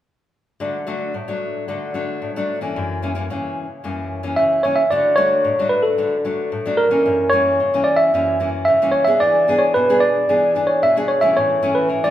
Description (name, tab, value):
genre	samba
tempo	112 BPM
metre	4/4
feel	straight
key	D major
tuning	A4 = 440 Hz
part	nylon-string guitar	accompaniment	0.6-12.1 s	F#2 to G#4	-22 LUFS	left 2 dB	none
part	tine electric piano	melody	4.4-12.1 s	A4 to E5	-15 LUFS	right 1 dB	none
room	wet large studio reverb, RT60 1.5 s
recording	band playing live in one room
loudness	-16 LUFS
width	side -12 dB against mid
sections	0.6-4.9 A section; 4.9-12.1 B section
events	none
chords	0.6 D; 2.8 F#7; 4.9 D; 7.1 F#7; 9.2 E7; 11.4 A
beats	| 0.61 1.15 1.68 2.22 | 2.76 3.30 3.84 4.37 | 4.91 5.45 5.99 6.53 | 7.06 7.60 8.14 8.68 | 9.21 9.75 10.29 10.83 | 11.37 11.90